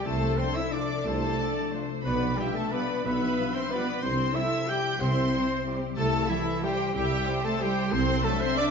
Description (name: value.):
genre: classical, orchestral ballroom waltz.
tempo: 183 BPM.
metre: 3/4.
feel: uneven beats, rubato.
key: C major.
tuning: A4 = 441 Hz.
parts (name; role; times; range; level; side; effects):
clear chamber violin section; melody; 0.0-8.7 s; E5 to G6; -37 LUFS; left 2 dB; none.
bright concert flute; second line; 0.0-8.7 s; E5 to G6; -37 LUFS; left 4 dB; none.
clear oboe; second line; 0.0-8.7 s; E4 to G5; -40 LUFS; right 2 dB; none.
mellow clarinet; second line; 0.0-8.7 s; E4 to G5; -36 LUFS; left 1 dB; none.
rich chamber violin section; second line; 0.0-8.7 s; E4 to G5; -39 LUFS; left 4 dB; none.
rich chamber viola section; accompaniment; 0.0-8.7 s; G4 to E5; -36 LUFS; equal; none.
mellow French horn section; sustained chords; 0.0-8.7 s; E3 to G4; -34 LUFS; left 4 dB; none.
concert harp; arpeggios; 0.0-8.7 s; B2 to C6; -34 LUFS; left 11 dB; none.
clear trumpet section; stabs; 0.0-8.6 s; E4 to G5; -35 LUFS; right 1 dB; none.
rich studio cello section; bass; 0.0-8.6 s; E3 to G4; -33 LUFS; right 4 dB; none.
mellow tuba; bass; 0.1-8.2 s; B1 to C2; -36 LUFS; right 4 dB; none.
rich chamber double bass section; bass; 0.1-8.2 s; B1 to C2; -33 LUFS; right 4 dB; none.
clear trombone section; sustained chords; 0.4-8.7 s; F3 to F4; -41 LUFS; right 6 dB; none.
room: wet recital hall reverb, RT60 1.5 s.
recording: dark, warm production, nothing above 7.5 kHz.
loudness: -25 LUFS.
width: side -6 dB against mid.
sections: 0.0-8.7 A section.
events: none.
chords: 0.1 Dm7/C; 2.0 G7/B; 4.0 C; 7.9 D7/C.